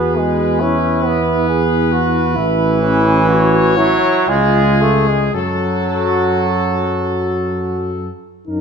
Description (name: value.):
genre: classical, hymn-like piece for brass band.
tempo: 55-70 BPM.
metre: 3/4.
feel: rubato.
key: F# minor.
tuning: A4 = 436 Hz.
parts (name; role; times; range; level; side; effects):
bright trumpet section; melody; 0.0-8.1 s; G#4 to C#5; -21 LUFS; left 7 dB; none.
warm flugelhorn; second line; 0.0-8.6 s; C#4 to A#4; -21 LUFS; right 8 dB; none.
brilliant trombone; accompaniment; 0.0-8.6 s; E3 to C#4; -18 LUFS; right 2 dB; none.
dark euphonium; accompaniment; 0.0-8.6 s; D#4 to F#4; -23 LUFS; left 4 dB; none.
dark tuba; bass; 0.0-8.6 s; A1 to F#2; -19 LUFS; equal; none.
room: moderate recital hall reverb, RT60 1.5 s.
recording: nothing above 10.3 kHz.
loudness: -13 LUFS.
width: side -6 dB against mid.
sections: 0.0-8.5 A section.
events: none.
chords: 0.0 E; 2.4 A; 4.3 C#; 5.3 F#m.